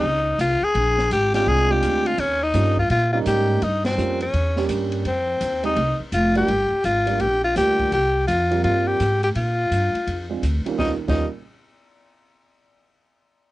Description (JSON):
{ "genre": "jazz, small-group swing and bop", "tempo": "168 BPM", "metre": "4/4", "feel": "swing 64% on 8ths", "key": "Eb mixolydian", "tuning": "A4 = 440 Hz", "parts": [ { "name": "growling tenor saxophone", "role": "melody", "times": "0.0-11.3 s", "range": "C4 to Ab4", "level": "-20 LUFS", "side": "left 1 dB", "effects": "cassette tape" }, { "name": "dark baby grand piano", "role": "accompaniment", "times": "0.0-11.2 s", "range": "Eb2 to G4", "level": "-26 LUFS", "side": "right 6 dB", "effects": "none" }, { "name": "upright bass", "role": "bass", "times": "0.0-11.2 s", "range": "F1 to Bb2", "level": "-23 LUFS", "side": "equal", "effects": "none" }, { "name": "open jazz drum kit", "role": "drums", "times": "0.4-11.1 s", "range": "crash cymbal, hi-hat, kick drum, ride cymbal, snare drum", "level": "-33 LUFS", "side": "left 1 dB", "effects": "cassette tape" } ], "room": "light reverb", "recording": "home recording on cassette, nothing above 10.4 kHz", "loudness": "-18 LUFS", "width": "side -17 dB against mid", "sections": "0.0-5.1 A section; 5.1-10.8 B section; 10.8-12.2 C section", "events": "band accent 3.8", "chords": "0.0 F7(no3); 0.8 Bb9; 2.2 Eb9; 3.6 Gm7b5; 4.3 Edim7; 5.1 F7sus2; 6.5 Gm7; 7.9 C7sus4; 9.4 Bb; 10.8 Eb9", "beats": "0.04 0.40 | 0.76 1.11 1.47 1.83 | 2.19 2.54 2.90 3.26 | 3.62 3.98 4.34 4.69 | 5.05 5.41 5.77 6.13 | 6.49 6.84 7.20 7.56 | 7.92 8.28 8.64 8.99 | 9.35 9.71 10.07 10.43 | 10.79 11.15" }